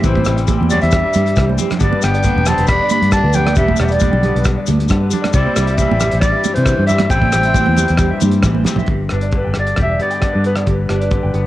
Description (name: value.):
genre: highlife guitar band.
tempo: 135 BPM.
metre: 4/4.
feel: straight.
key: G major.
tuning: A4 = 440 Hz.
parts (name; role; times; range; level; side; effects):
breathy clarinet; melody; 0.0-11.5 s; B4 to B5; -19 LUFS; equal; cassette tape.
growling tenor saxophone; second line; 0.0-8.4 s; E3 to D4; -25 LUFS; left 6 dB; none.
twangy electric guitar; accompaniment; 0.0-11.5 s; G2 to G4; -23 LUFS; left 6 dB; none.
electric guitar through a small old amp; arpeggios; 0.0-11.4 s; G4 to G5; -24 LUFS; right 6 dB; lush chorus, tape echo.
fingered electric bass; bass; 0.0-11.5 s; E1 to C3; -16 LUFS; equal; none.
cloth-damped thuddy drum kit; drums; 0.0-11.4 s; hi-hat, kick drum, rim click, snare drum, toms; -20 LUFS; equal; cassette tape.
maracas; percussion; 0.0-8.8 s; none; -28 LUFS; left 8 dB; none.
congas; percussion; 0.2-8.9 s; none; -21 LUFS; right 7 dB; none.
room: light reverb, studio ambience.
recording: home recording on cassette.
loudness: -12 LUFS.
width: side -15 dB against mid.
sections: 0.0-8.9 A section; 8.9-11.5 B section.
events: drum fill 1.5-1.8, 8.3-8.9.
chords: 0.0 C; 1.8 G; 5.3 C; 8.9 G.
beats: | 0.04 0.48 0.92 1.36 | 1.81 2.25 2.69 3.14 | 3.58 4.02 4.46 4.91 | 5.35 5.79 6.24 6.68 | 7.12 7.56 8.01 8.45 | 8.89 9.34 9.78 10.23 | 10.67 11.12.